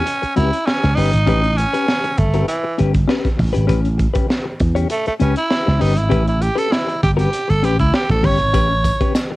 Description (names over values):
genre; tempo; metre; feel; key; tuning
funk; 99 BPM; 4/4; straight; A mixolydian; A4 = 441 Hz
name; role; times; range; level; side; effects
growling tenor saxophone; melody; 0.0-9.2 s; E3 to C#5; -20 LUFS; right 1 dB; cassette tape
clean electric guitar; accompaniment; 0.0-9.3 s; C#4 to C#5; -22 LUFS; left 6 dB; tremolo, cassette tape
crunchy breakbeat drum kit; drums; 0.1-9.3 s; hi-hat, kick drum, snare drum; -21 LUFS; equal; cassette tape
slap bass with an envelope filter; bass; 0.2-8.9 s; G1 to E2; -17 LUFS; equal; none
tambourine; percussion; 8.5-9.3 s; none; -36 LUFS; left 7 dB; none
room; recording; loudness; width
studio ambience; home recording on cassette; -15 LUFS; side -18 dB against mid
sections
0.0-9.4 A section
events
tenor saxophone solo 0.0-9.4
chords
0.0 A9